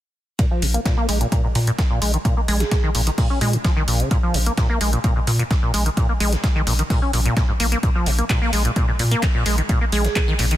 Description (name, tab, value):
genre	acid house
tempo	129 BPM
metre	4/4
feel	straight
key	Bb minor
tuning	A4 = 441 Hz
part	acid bass, saw	riff	0.4-10.5 s	Ab2 to Db4	-23 LUFS	equal	tube saturation, wide subtle chorus, digital delay
part	dusty soul sampler-style drum kit	drums	0.4-10.6 s	hi-hat, ride cymbal, snare drum	-33 LUFS	right 3 dB	high-pass filter on cymbals, high-pass filter on snare, high-pass filter on hats, high-pass filter on room
part	electronic kick drum	drums	0.4-10.3 s	none	-20 LUFS	equal	overdrive
part	punchy analog drum machine	drums	0.4-10.6 s	handclaps, hi-hat	-26 LUFS	left 1 dB	overdrive
part	round analog bass	bass	0.6-10.5 s	Bb1 to Bb2	-20 LUFS	equal	sidechain pumping
part	vibraphone with hard mallets	melody	2.5-2.7, 9.9-10.1 s	Ab4	-29 LUFS	right 5 dB	tape echo
room	little or no reverb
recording	dense, heavily limited modern master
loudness	-17 LUFS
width	side -13 dB against mid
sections	0.4-10.6 A section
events	filter sweep on acid bass 0.4-10.6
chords	none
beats	| 0.39 0.85 1.32 1.78 | 2.25 2.72 3.18 3.65 | 4.11 4.58 5.04 5.51 | 5.97 6.44 6.90 7.37 | 7.83 8.30 8.76 9.23 | 9.69 10.16